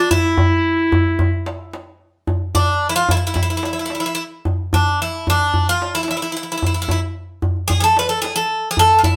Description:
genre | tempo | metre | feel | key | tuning
Turkish makam ensemble | 111 BPM | 4/4 | straight | E makam hicaz | A4 = 440 Hz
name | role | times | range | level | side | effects
Greek bouzouki | melody | 0.0-9.2 s | D4 to B4 | -20 LUFS | equal | none
clear clarinet | second line | 0.0-1.7 s | E4 to F4 | -20 LUFS | equal | none
darbuka | percussion | 0.1-9.2 s | none | -22 LUFS | equal | none
room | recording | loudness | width
moderate studio reverb, RT60 0.8 s | band playing live in one room | -18 LUFS | mono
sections
0.0-2.3 A section; 2.3-9.2 B section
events
none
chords
none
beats
| 0.12 0.66 1.21 1.75 | 2.29 2.83 3.37 3.92 | 4.46 5.00 5.54 6.08 | 6.63 7.17 7.71 8.25 | 8.79

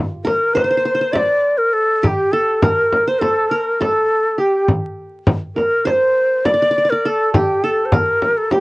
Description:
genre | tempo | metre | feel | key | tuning
Turkish makam ensemble | 204 BPM (eighths) | 9/8 | straight | unclear | A4 = 439 Hz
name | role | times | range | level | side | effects
qanun | second line | 0.0-8.6 s | F4 to D5 | -21 LUFS | right 2 dB | none
breathy bright ney | melody | 0.2-8.6 s | G4 to E5 | -15 LUFS | equal | none
frame drum | percussion | 0.3-8.6 s | none | -18 LUFS | equal | none
room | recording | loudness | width
moderate booth ambience, RT60 0.2 s | worn, warbling old tape, cassette tape, vinyl crackle, warbly pitch drift, nothing above 10.3 kHz | -14 LUFS | side -22 dB against mid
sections
0.0-8.6 A section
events
none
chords
none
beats
0.26 0.56 0.85 1.15 1.44 1.74 | 2.03 2.32 2.62 2.91 3.21 3.50 3.80 4.09 4.39 | 4.68 4.98 5.27 5.57 5.86 6.16 6.45 6.74 7.04 | 7.33 7.63 7.92 8.22 8.51

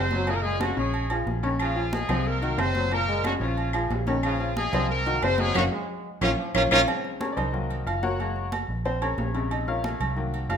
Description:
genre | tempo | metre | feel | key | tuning
latin, salsa | 182 BPM | 4/4 | straight | Bb minor | A4 = 435 Hz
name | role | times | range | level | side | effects
brilliant horn section | melody | 0.0-6.8 s | F3 to C5 | -26 LUFS | equal | none
bright upright piano | accompaniment | 0.0-10.6 s | Bb2 to Gb5 | -29 LUFS | left 3 dB | none
vintage muted fingered electric bass | bass | 0.0-10.6 s | Gb1 to C2 | -29 LUFS | equal | none
bright trombone section | second line | 0.1-6.8 s | Db3 to Ab3 | -34 LUFS | equal | none
congas | percussion | 0.1-10.6 s | none | -35 LUFS | left 1 dB | none
agogo bells and timbales | percussion | 0.3-10.6 s | none | -32 LUFS | right 6 dB | none
claves | percussion | 1.6-6.8 s | none | -38 LUFS | left 5 dB | none
room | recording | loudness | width
moderate large studio reverb, RT60 1.3 s | minimal, uncompressed stereo recording, faint mains hum | -23 LUFS | side -7 dB against mid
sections
0.0-6.9 A section; 6.9-10.6 B section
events
drum fill 5.6-6.9; band accent 5.6-6.9; upright piano solo 6.9-10.6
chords
0.3 Gbadd9; 0.9 Bbm7; 2.3 Cm7b5; 2.9 Gbadd9; 3.6 Bbm7; 4.9 Cm7b5; 5.6 Gbadd9; 6.2 Bbm; 6.9 Bbm7; 7.5 Cm7b5; 8.2 Gbadd9; 8.8 Bbm7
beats
| 0.28 0.60 0.94 1.27 | 1.60 1.93 2.26 2.59 | 2.92 3.25 3.58 3.90 | 4.24 4.56 4.89 5.22 | 5.55 5.88 6.21 6.54 | 6.87 7.20 7.53 7.86 | 8.19 8.52 8.85 9.18 | 9.51 9.84 10.17 10.50

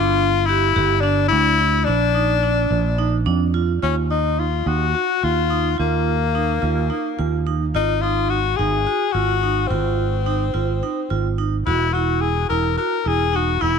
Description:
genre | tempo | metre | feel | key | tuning
progressive instrumental, band music in an uneven meter | 215 BPM (eighths) | 7/8 | straight | unclear | A4 = 436 Hz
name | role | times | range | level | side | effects
bright tenor saxophone | melody | 0.0-13.8 s | Bb3 to Bb4 | -20 LUFS | left 10 dB | none
vibraphone with medium hard mallets | arpeggios | 0.0-13.8 s | D4 to G4 | -24 LUFS | right 13 dB | none
fretless electric bass | bass | 0.0-13.8 s | E1 to F2 | -21 LUFS | right 2 dB | lush chorus
room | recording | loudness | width
light reverb | 1960s-style stereo with parts hard left and right | -17 LUFS | side -6 dB against mid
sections
0.0-3.8 A section; 3.8-13.8 B section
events
none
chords
0.0 G5; 1.9 Bb; 3.8 Ebsus2; 7.7 Ab; 11.7 E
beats
0.20 0.48 0.76 1.04 1.32 1.60 | 1.88 2.16 2.44 2.72 3.00 3.27 3.55 | 3.83 4.11 4.39 4.67 4.95 5.23 5.51 | 5.79 6.07 6.35 6.63 6.91 7.19 7.47 | 7.75 8.03 8.30 8.59 8.86 9.14 9.42 | 9.70 9.98 10.26 10.54 10.82 11.10 11.38 | 11.66 11.94 12.22 12.50 12.78 13.05 13.33 | 13.61

